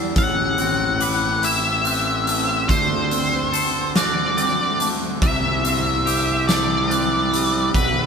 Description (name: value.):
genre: post-rock.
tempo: 48 BPM (dotted quarters).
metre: 6/8.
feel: straight.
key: unclear.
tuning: A4 = 440 Hz.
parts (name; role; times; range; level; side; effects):
shimmering ambient pad; sustained chords; 0.0-8.1 s; C3 to D5; -32 LUFS; right 3 dB; chorus, built-in reverb.
glockenspiel with brass mallets; arpeggios; 0.0-8.1 s; D6 to F#6; -29 LUFS; equal; none.
twangy electric guitar; arpeggios; 0.0-8.1 s; A2 to B4; -27 LUFS; left 1 dB; phaser.
fuzz fingered electric bass; bass; 0.0-8.1 s; A1 to E2; -25 LUFS; equal; overdrive.
octave-fuzz lead guitar; melody; 0.2-8.1 s; B4 to F#5; -21 LUFS; left 1 dB; distortion.
huge arena drum kit; drums; 0.2-7.9 s; hi-hat, kick drum, snare drum; -23 LUFS; equal; none.
room: moderate stone room reverb, RT60 1.1 s.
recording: band playing live in one room.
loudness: -17 LUFS.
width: side -6 dB against mid.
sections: 0.2-8.1 A section.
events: none.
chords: 0.2 Amadd9; 2.7 D7; 5.2 Csus2.